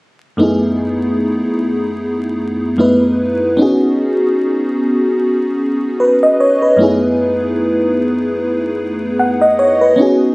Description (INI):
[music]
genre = R&B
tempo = 75 BPM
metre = 4/4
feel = swing 56% on 16ths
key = F# dorian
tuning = A4 = 441 Hz
[part]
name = FM electric piano with soft pad layer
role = accompaniment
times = 0.4-10.3 s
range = F#2 to F#5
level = -12 LUFS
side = equal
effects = chorus
[sound]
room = light reverb, digital ambience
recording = recorded on a phone in the room, studio reverb, vinyl crackle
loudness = -12 LUFS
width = side -24 dB against mid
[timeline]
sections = 0.4-10.3 A section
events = none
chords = 0.4 F#m11; 3.6 G#m7; 6.8 F#m11